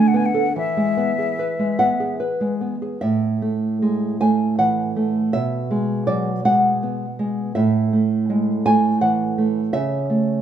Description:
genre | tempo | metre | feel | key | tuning
romantic duo for flute and classical guitar | 71-84 BPM | 3/4 | rubato | A major | A4 = 440 Hz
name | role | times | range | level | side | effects
silver concert flute | melody | 0.0-2.2 s | E5 to G#5 | -24 LUFS | left 5 dB | none
nylon-string guitar | accompaniment | 0.0-10.4 s | A2 to G#5 | -18 LUFS | right 2 dB | none
room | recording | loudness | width
moderate recital hall reverb, RT60 1.8 s | minimal, uncompressed stereo recording | -18 LUFS | side -9 dB against mid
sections
0.0-3.0 A section; 3.0-10.4 B section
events
none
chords
0.0 Bm7/D; 0.6 E; 3.0 A5; 5.3 E/B; 7.6 A5; 9.7 A/C#

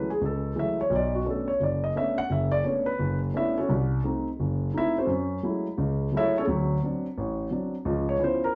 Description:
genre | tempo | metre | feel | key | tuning
jazz | 173 BPM | 4/4 | swing 63% on 8ths | F# minor | A4 = 440 Hz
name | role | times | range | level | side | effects
dark concert grand piano | solo | 0.0-8.6 s | F#1 to F#5 | -27 LUFS | equal | none
room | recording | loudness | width
wet club reverb, RT60 0.5 s | heard from further back in the room | -27 LUFS | mono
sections
0.0-8.6 A section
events
grand piano solo 0.0-8.6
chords
0.0 F#m9; 0.9 Bm9; 3.7 Cdim7; 5.1 F#m9; 6.5 D7; 7.8 C#7#9

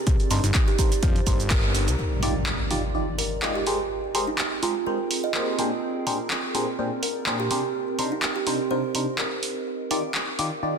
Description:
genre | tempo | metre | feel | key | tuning
piano house | 125 BPM | 4/4 | swing 55% on 16ths | C minor | A4 = 440 Hz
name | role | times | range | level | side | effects
warbly tape-like pad | texture | 0.0-10.8 s | C4 to Bb5 | -34 LUFS | right 2 dB | chorus, built-in reverb, phaser, sidechain pumping
fat analog bass | bass | 0.1-2.0 s | G1 to F2 | -25 LUFS | equal | sidechain pumping
electronic kick drum | drums | 0.1-1.6 s | none | -21 LUFS | equal | none
punchy analog drum machine | drums | 0.1-10.5 s | handclaps, hi-hat, shaker | -28 LUFS | right 1 dB | none
barking FM electric piano | riff | 0.3-10.7 s | Bb2 to D5 | -28 LUFS | left 1 dB | phaser, sidechain pumping, ping-pong delay
kalimba | melody | 0.4-9.7 s | Eb4 to Eb5 | -30 LUFS | right 5 dB | ping-pong delay
impact | sound effects | 2.0-3.9 s | none | -29 LUFS | equal | none
room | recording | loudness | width
light reverb, digital ambience | dense, heavily limited modern master | -22 LUFS | side -6 dB against mid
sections
0.0-2.0 A section; 2.0-10.8 B section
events
band accent 1.5; impact 2.0-3.9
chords
0.1 Cm9; 2.0 Ebmaj9; 3.7 Abmaj9; 5.6 Bb13; 7.7 Cm9; 9.7 Ebmaj9

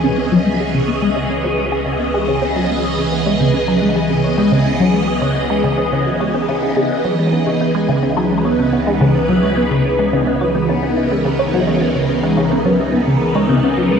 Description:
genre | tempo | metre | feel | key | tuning
ambient | 107 BPM | 4/4 | straight | C# dorian | A4 = 438 Hz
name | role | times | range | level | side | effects
phased string machine | sustained chords | 0.0-14.0 s | E3 to D#5 | -17 LUFS | equal | ensemble chorus, phaser, shimmer reverb
thumb-piano-like synth pluck | arpeggios | 0.0-14.0 s | B3 to C#5 | -26 LUFS | moving between left 6 dB and right 2 dB | chorus, auto-pan, analog delay, shimmer reverb
resonant blip pluck | riff | 0.0-14.0 s | C#3 to G#4 | -17 LUFS | equal | phaser, analog chorus, analog delay, shimmer reverb
analog drone | bass | 0.0-14.0 s | C#2 | -28 LUFS | equal | chorus
room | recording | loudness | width
moderate plate reverb, RT60 3.5 s | echo-heavy mix | -14 LUFS | side -6 dB against mid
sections
0.0-14.0 A section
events
fade-in on synth arpeggio sound 0.0-14.0; fade-in on synth drone 0.0-14.0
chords
0.0 C#m7

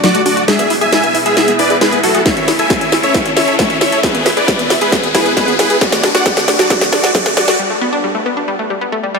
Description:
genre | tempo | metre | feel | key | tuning
uplifting trance | 135 BPM | 4/4 | straight | unclear | A4 = 440 Hz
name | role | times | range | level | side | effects
dense compressed supersaw | melody | 0.0-7.5 s | F#4 to G#5 | -15 LUFS | equal | sidechain pumping, tape echo
lush unison pad | sustained chords | 0.0-7.6 s | A3 to E5 | -22 LUFS | right 1 dB | chorus, phaser, sidechain pumping
wide unison pluck | arpeggios | 0.0-9.2 s | F#3 to A4 | -19 LUFS | left 2 dB | sidechain pumping, dub echo
techno drum kit | drums | 0.0-7.6 s | hi-hat, snare drum | -16 LUFS | equal | small room reverb
riser | sound effects | 0.0-7.6 s | none | -20 LUFS | left 3 dB | none
electronic kick drum | drums | 2.3-7.2 s | none | -20 LUFS | equal | distortion, small room reverb
room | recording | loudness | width
moderate huge ambient reverb, RT60 4.2 s | high-pass filter | -11 LUFS | side -4 dB against mid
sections
0.0-9.2 A section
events
build-up 0.0-9.2; drum fill 0.0-7.6; riser 0.0-7.6; filter sweep on synth arpeggio sound 0.0-9.2; break 7.6-9.2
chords
0.5 E; 2.3 A; 4.0 E; 5.8 D; 7.6 Gadd9

